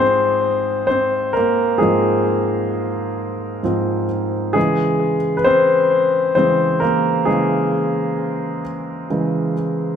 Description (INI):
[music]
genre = pop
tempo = 44 BPM (dotted quarters)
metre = 6/8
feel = straight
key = unclear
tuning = A4 = 440 Hz
[part]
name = warm concert grand piano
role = solo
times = 0.0-10.0 s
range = Ab2 to C5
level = -16 LUFS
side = left 1 dB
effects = tape echo
[sound]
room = wet large studio reverb, RT60 1.1 s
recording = band playing live in one room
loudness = -16 LUFS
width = side -8 dB against mid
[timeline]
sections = 0.0-10.0 A section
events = grand piano solo 0.0-10.0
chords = 0.0 Ab6; 4.6 Dbm